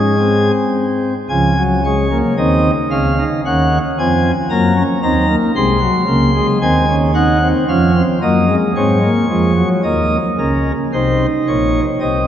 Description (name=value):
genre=classical, baroque-style 3-part fugue for pipe organ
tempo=56 BPM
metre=4/4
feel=straight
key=Db major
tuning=A4 = 436 Hz
part: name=pipe organ, sparkling flutes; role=solo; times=0.0-12.3 s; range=Bb1 to C6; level=-12 LUFS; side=equal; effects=none
room=wet church reverb, RT60 3.6 s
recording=nothing above 7.6 kHz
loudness=-12 LUFS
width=side -10 dB against mid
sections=0.0-1.3 A section; 1.3-9.8 B section; 9.8-12.3 A section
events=none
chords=0.0 Ab; 1.3 Db; 3.4 Ebm7; 5.6 Ab7/C; 7.7 Db/F; 9.8 Eb5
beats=0.20 | 1.30 2.37 3.44 4.50 | 5.55 6.61 7.68 8.76 | 9.83 10.92 11.99